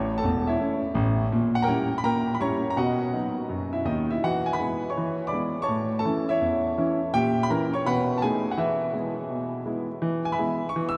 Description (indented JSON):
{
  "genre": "jazz, stride piano",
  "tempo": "166 BPM",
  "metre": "4/4",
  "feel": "swing 64% on 8ths",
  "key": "E major",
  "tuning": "A4 = 442 Hz",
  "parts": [
    { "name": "clear concert grand piano", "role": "solo", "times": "0.0-11.0 s", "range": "E1 to E6", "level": "-26 LUFS", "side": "equal", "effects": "none" }
  ],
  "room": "wet cathedral reverb, RT60 6.7 s",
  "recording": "in a vast, echoing space",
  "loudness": "-26 LUFS",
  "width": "mono",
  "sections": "0.0-10.0 A section",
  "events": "none",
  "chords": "0.0 A; 1.3 A#dim7; 2.8 B; 4.2 E; 5.0 E7; 5.7 A; 7.1 A#dim7; 7.9 B7; 8.6 E"
}